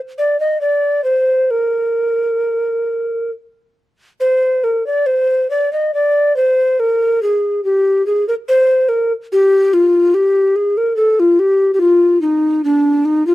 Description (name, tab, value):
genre	classical, baroque-style fantasia for unaccompanied recorder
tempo	66-73 BPM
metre	3/4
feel	rubato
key	Bb major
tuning	A4 = 435 Hz
part	mellow hollow tenor recorder	solo	0.2-13.3 s	D4 to Eb5	-12 LUFS	equal	none
room	light reverb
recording	close, detailed microphones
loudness	-12 LUFS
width	side -16 dB against mid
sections	0.0-4.2 A section; 4.2-13.3 A section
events	none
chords	none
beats	0.62 | 1.51 2.42 3.31 | 4.21 5.08 5.94 | 6.79 7.63 8.47 | 9.31 10.15 10.97 | 11.81 12.63